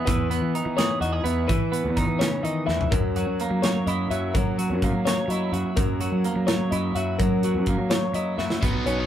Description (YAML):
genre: math rock and midwest emo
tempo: 84 BPM (dotted quarters)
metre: 6/8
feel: straight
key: unclear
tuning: A4 = 441 Hz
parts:
  - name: twelve-string electric guitar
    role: accompaniment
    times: 0.0-9.1 s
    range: F#2 to C#5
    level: -27 LUFS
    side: right 3 dB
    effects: none
  - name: twelve-string electric guitar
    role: arpeggios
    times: 0.0-9.1 s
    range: A#4 to E5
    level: -30 LUFS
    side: left 6 dB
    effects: none
  - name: fuzz fingered electric bass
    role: bass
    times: 0.1-9.1 s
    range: B1 to F#3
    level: -27 LUFS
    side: equal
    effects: overdrive
  - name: modern studio drum kit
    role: drums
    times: 0.1-9.0 s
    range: hi-hat, kick drum, snare drum, toms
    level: -26 LUFS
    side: equal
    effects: none
  - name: cranked stack guitar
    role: riff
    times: 8.6-9.1 s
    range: B2 to D#4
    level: -29 LUFS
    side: equal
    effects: overdrive
room: moderate small room reverb, RT60 0.5 s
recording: rough rehearsal-room recording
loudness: -21 LUFS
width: side -10 dB against mid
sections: 0.0-8.6 A section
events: drum fill 2.7, 8.4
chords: 0.0 Emaj7; 2.9 F#7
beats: | 0.07 0.78 | 1.49 2.21 | 2.92 3.63 | 4.34 5.05 | 5.77 6.48 | 7.19 7.91 | 8.62